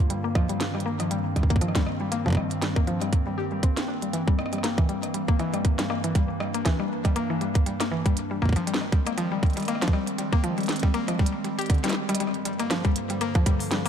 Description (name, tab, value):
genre	IDM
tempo	119 BPM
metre	4/4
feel	swing 56% on 16ths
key	unclear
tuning	A4 = 439 Hz
part	warbly tape-like pad	sustained chords	0.0-13.9 s	G2 to D4	-30 LUFS	right 1 dB	chorus, built-in reverb
part	mallet-like synth pluck	arpeggios	0.1-13.9 s	D3 to G4	-28 LUFS	left 3 dB	chorus, ping-pong delay
part	glitchy drum kit	drums	0.1-13.9 s	hi-hat, rim click, snare drum	-32 LUFS	right 1 dB	overdrive, ping-pong delay
part	electronic kick drum	drums	0.4-13.6 s	none	-22 LUFS	right 1 dB	overdrive
room	light reverb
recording	dark, warm production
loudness	-23 LUFS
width	side -8 dB against mid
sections	0.0-12.2 A section; 12.2-13.9 B section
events	filter sweep on synth arpeggio sound 0.0-12.2; drum fill 11.9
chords	0.1 Eb69/G; 4.1 C7/G; 8.2 Fm7; 12.2 Gm7